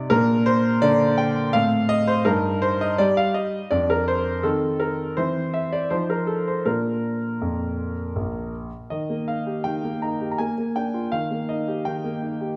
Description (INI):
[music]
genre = classical-period piano sonatina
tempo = 82 BPM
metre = 3/4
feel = straight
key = Bb major, Eb major from 8.9 s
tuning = A4 = 439 Hz
[part]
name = clear grand piano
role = solo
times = 0.0-12.6 s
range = Bb1 to Bb5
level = -23 LUFS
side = equal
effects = none
[sound]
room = wet recital hall reverb, RT60 1.6 s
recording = dark, warm production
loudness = -23 LUFS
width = mono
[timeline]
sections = 0.0-8.9 A section; 8.9-12.6 B section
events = none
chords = 0.1 Bb69; 1.5 F/A; 2.3 Eb/G; 3.7 Dm/F; 4.5 Cm/Eb; 5.2 C/E; 5.9 F7; 6.7 Bb; 8.9 Eb; 10.4 Bb7; 11.1 Eb